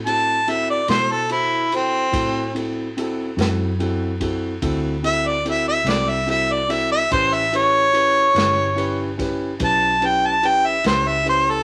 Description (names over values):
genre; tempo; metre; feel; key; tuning
slow blues; 48 BPM (dotted quarters); 12/8; straight; unclear; A4 = 440 Hz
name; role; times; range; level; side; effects
vintage muted fingered electric bass; bass; 0.0-11.6 s; G1 to B2; -31 LUFS; equal; none
clear harmonica; melody; 0.1-11.6 s; C4 to A5; -20 LUFS; equal; overdrive
dark upright piano; accompaniment; 0.1-11.6 s; C4 to C5; -28 LUFS; equal; none
swinging big-band drum kit; drums; 0.1-11.5 s; kick drum, ride cymbal, snare drum; -31 LUFS; equal; none
room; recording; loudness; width
moderate studio reverb, RT60 0.7 s; vinyl crackle; -20 LUFS; mono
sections
0.0-11.6 A section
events
harmonica solo 0.0-11.6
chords
0.0 D7; 7.1 A7